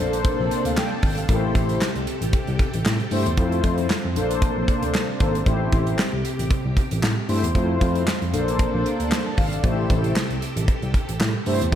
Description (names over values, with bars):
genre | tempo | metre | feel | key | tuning
early-eighties boogie funk | 115 BPM | 4/4 | swing 56% on 16ths | A phrygian | A4 = 440 Hz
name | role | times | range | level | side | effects
mellow synth brass | accompaniment | 0.0-11.8 s | A3 to A5 | -25 LUFS | left 2 dB | chorus
string machine, violins | sustained chords | 0.0-11.8 s | C3 to A4 | -30 LUFS | equal | ensemble chorus
tine electric piano | bass | 0.0-11.8 s | G#1 to A2 | -25 LUFS | equal | overdrive, fast stereo tremolo
modern studio drum kit | drums | 0.1-11.8 s | handclaps, hi-hat, kick drum, snare drum | -23 LUFS | equal | none
room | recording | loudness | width
moderate lush hall reverb, RT60 1.8 s, small room reverb | big arena sound | -20 LUFS | side -10 dB against mid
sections
0.0-11.8 A section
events
none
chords
0.0 Bbmaj9; 1.3 Am7; 3.4 Fmaj7; 4.2 Bbmaj9; 5.5 Am7; 7.6 Fmaj7; 8.3 Bbmaj9; 9.6 Am7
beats
0.25 0.77 | 1.29 1.81 2.33 2.85 | 3.38 3.90 4.42 4.94 | 5.46 5.99 6.51 7.03 | 7.55 8.07 8.59 9.12 | 9.64 10.16 10.68 11.20 | 11.72